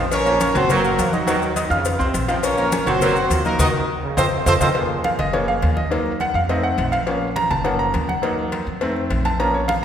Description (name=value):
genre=latin, salsa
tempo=207 BPM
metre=4/4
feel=straight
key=Bb harmonic minor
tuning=A4 = 442 Hz
part: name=bright trombone section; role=second line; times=0.0-4.7 s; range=C3 to Gb3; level=-26 LUFS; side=right 3 dB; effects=none
part: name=bright grand piano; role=accompaniment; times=0.0-9.8 s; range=Db3 to Gb6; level=-21 LUFS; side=equal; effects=none
part: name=upright bass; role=bass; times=0.0-9.8 s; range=Gb1 to F2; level=-25 LUFS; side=equal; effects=none
part: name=mellow horn section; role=melody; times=0.1-4.7 s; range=Gb3 to Eb5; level=-21 LUFS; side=equal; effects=none
part: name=congas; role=percussion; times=0.1-9.8 s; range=none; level=-28 LUFS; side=left 1 dB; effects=none
part: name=cowbell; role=percussion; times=0.1-9.8 s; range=none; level=-28 LUFS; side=left 4 dB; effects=none
part: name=maracas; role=percussion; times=0.1-4.7 s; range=none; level=-33 LUFS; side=left 8 dB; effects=none
room=wet concert hall reverb, RT60 2.0 s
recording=recorded in a church or concert hall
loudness=-17 LUFS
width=side -9 dB against mid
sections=0.0-4.8 A section; 4.8-9.8 B section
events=band accent 3.6-4.8; drum fill 4.2-4.8; grand piano solo 4.8-9.8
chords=0.1 Bbm; 0.7 Gbmaj7; 1.3 Ebm; 1.9 F5; 2.4 Bbm; 3.0 Gbmaj7; 3.6 Ebm; 4.2 F7; 4.8 Bbm; 5.9 Ebm; 6.5 F7; 7.1 Bbm; 7.7 Gbmaj7; 8.2 Ebm; 8.8 F7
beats=| 0.12 0.41 0.70 0.98 | 1.27 1.56 1.85 2.15 | 2.44 2.72 3.01 3.30 | 3.59 3.88 4.17 4.46 | 4.75 5.04 5.33 5.62 | 5.92 6.21 6.50 6.79 | 7.08 7.37 7.66 7.95 | 8.24 8.53 8.82 9.11 | 9.40 9.69